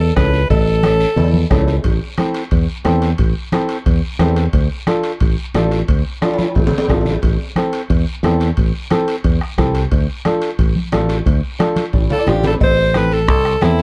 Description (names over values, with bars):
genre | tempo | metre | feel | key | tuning
latin, cumbia | 178 BPM | 4/4 | straight | unclear | A4 = 439 Hz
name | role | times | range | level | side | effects
edgy alto saxophone | melody | 0.0-1.5, 12.1-13.8 s | E4 to C5 | -19 LUFS | equal | none
fingered electric bass | bass | 0.0-13.8 s | A1 to E2 | -19 LUFS | equal | none
flamenco guitar | accompaniment | 0.2-13.8 s | C4 to F5 | -21 LUFS | equal | none
bombo | percussion | 0.2-13.8 s | none | -21 LUFS | equal | none
congas | percussion | 0.2-13.8 s | none | -24 LUFS | equal | none
cowbell and timbales | percussion | 0.2-13.8 s | none | -29 LUFS | equal | none
guiro | percussion | 0.2-13.8 s | none | -36 LUFS | equal | none
room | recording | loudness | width
light reverb | dark, warm production | -16 LUFS | mono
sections
0.0-1.8 A section; 1.8-12.6 B section; 12.6-13.8 C section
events
drum fill 1.2-1.8, 6.2-7.2, 11.8-12.6; nylon-string guitar fill 11.9-12.6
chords
0.0 A; 1.8 Am; 4.5 Dm; 7.2 Am; 9.9 Dm; 12.6 Am